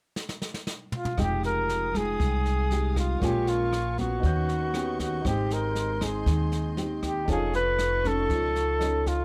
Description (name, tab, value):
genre	bossa nova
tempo	118 BPM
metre	4/4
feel	straight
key	F minor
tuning	A4 = 441 Hz
part	jazz brush drum kit	drums	0.2-9.1 s	kick drum, rim click, snare drum, toms	-35 LUFS	equal	none
part	breathy flugelhorn	melody	1.0-9.2 s	F4 to B4	-31 LUFS	equal	none
part	warm grand piano	accompaniment	1.1-9.2 s	Eb4 to G6	-42 LUFS	equal	none
part	nylon-string guitar	accompaniment	1.2-9.2 s	Bb2 to A4	-33 LUFS	equal	none
part	dark studio string section	sustained chords	1.2-9.2 s	Ab3 to G6	-44 LUFS	equal	none
part	upright bass	bass	1.2-9.2 s	F1 to Eb2	-32 LUFS	equal	none
room	light reverb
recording	close, detailed microphones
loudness	-27 LUFS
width	mono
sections	0.0-1.2 A section; 1.2-9.2 B section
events	drum fill 0.2-1.2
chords	0.0 N.C.; 1.2 Fm9; 3.2 Bbm7; 4.2 Eb7alt; 5.3 Abmaj7; 7.3 Faug7